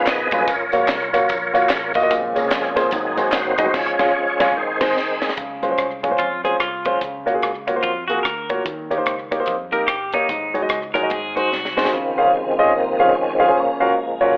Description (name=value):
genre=uptempo gospel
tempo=147 BPM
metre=4/4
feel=swing 62% on 8ths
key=Db major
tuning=A4 = 442 Hz
part: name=warm concert grand piano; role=accompaniment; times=0.0-14.3 s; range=Ab2 to Ab5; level=-21 LUFS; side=equal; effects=none
part: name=tonewheel organ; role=sustained chords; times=0.0-5.3, 11.9-14.4 s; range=C3 to Eb5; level=-24 LUFS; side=equal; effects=fast rotary speaker, overdrive, chorus vibrato
part: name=picked electric bass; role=bass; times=0.1-11.9 s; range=F1 to F2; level=-44 LUFS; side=equal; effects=none
part: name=crisp fusion drum kit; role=drums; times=0.1-11.9 s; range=crash cymbal, hi-hat, kick drum, rim click, snare drum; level=-28 LUFS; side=equal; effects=none
part: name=handclaps and tambourine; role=percussion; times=0.1-3.7 s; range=none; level=-33 LUFS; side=equal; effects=none
part: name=clean electric guitar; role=second line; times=6.2-11.9 s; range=Eb4 to Bb4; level=-26 LUFS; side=equal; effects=none
room=moderate echo chamber reverb, RT60 1.4 s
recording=telephone sound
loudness=-20 LUFS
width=mono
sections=0.0-5.4 A section; 5.4-11.9 B section; 11.9-14.4 A section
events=tonewheel organ solo 0.0-5.4, 11.9-14.4; band accent 3.7-5.4; drum fill 5.0-5.4, 11.5-11.9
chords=0.5 Gbmaj7; 2.1 Bbm7; 2.9 Ab7; 3.7 Db/Ab; 4.6 Ab; 5.4 Dbmaj7; 7.0 Gbmaj7/Db; 8.7 Eb7; 10.3 Ab7sus4; 11.1 Ab7; 11.9 Dbmaj7; 13.6 Gbmaj7/Db